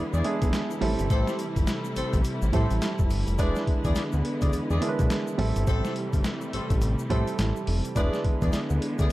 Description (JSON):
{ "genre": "R&B, new jack swing", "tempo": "105 BPM", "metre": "4/4", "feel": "swing 61% on 16ths", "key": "A minor", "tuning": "A4 = 437 Hz", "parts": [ { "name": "warm grand piano", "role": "accompaniment", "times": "0.0-9.1 s", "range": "G3 to B4", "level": "-31 LUFS", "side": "right 4 dB", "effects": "none" }, { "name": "warm studio string section", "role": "sustained chords", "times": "0.0-9.1 s", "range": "C3 to E4", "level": "-32 LUFS", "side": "equal", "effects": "none" }, { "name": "mellow horn section", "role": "stabs", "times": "0.0-9.1 s", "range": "E4 to D5", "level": "-35 LUFS", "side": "left 2 dB", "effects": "digital delay" }, { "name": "fat analog bass", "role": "bass", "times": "0.0-9.1 s", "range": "E1 to A2", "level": "-26 LUFS", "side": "equal", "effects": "none" }, { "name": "egg shaker", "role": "percussion", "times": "0.1-9.1 s", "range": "none", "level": "-49 LUFS", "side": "left 7 dB", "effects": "none" }, { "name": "boom bap sampler-style drum kit", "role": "drums", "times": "0.2-9.1 s", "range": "handclaps, hi-hat, kick drum, snare drum", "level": "-27 LUFS", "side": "equal", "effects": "overdrive" } ], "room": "studio reverb", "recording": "dark, warm production", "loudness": "-23 LUFS", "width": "side -17 dB against mid", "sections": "0.0-9.1 A section", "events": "none", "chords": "0.0 E7; 0.8 Am7; 3.4 E7; 5.4 Am7; 8.0 E7", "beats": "0.53 | 1.10 1.68 2.25 2.82 | 3.39 3.96 4.53 5.10 | 5.67 6.25 6.82 7.39 | 7.96 8.53 9.10" }